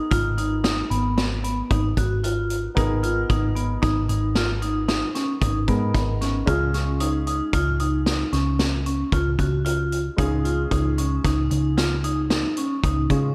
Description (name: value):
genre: progressive instrumental, band music in an uneven meter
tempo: 113 BPM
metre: 7/4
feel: straight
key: G# dorian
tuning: A4 = 440 Hz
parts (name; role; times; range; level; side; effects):
- warm grand piano; accompaniment; 0.0-13.3 s; G#3 to A#4; -36 LUFS; equal; none
- vibraphone with medium hard mallets; arpeggios; 0.1-13.3 s; B3 to F#4; -28 LUFS; equal; tape echo
- hollow-body short-scale picked electric bass; bass; 0.1-13.3 s; G#1 to C#3; -26 LUFS; equal; none
- vintage drum kit; drums; 0.1-13.2 s; hi-hat, kick drum, snare drum; -28 LUFS; equal; none
room: moderate lush hall reverb, RT60 1.6 s, small room reverb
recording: big arena sound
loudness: -23 LUFS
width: mono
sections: 0.0-13.3 A section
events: none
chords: 0.0 G#madd9; 6.5 C#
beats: 0.11 0.64 1.17 1.70 2.23 | 2.76 3.29 3.83 4.36 4.88 5.42 5.95 | 6.47 7.00 7.53 8.06 8.59 9.12 9.65 | 10.18 10.71 11.24 11.77 12.30 12.83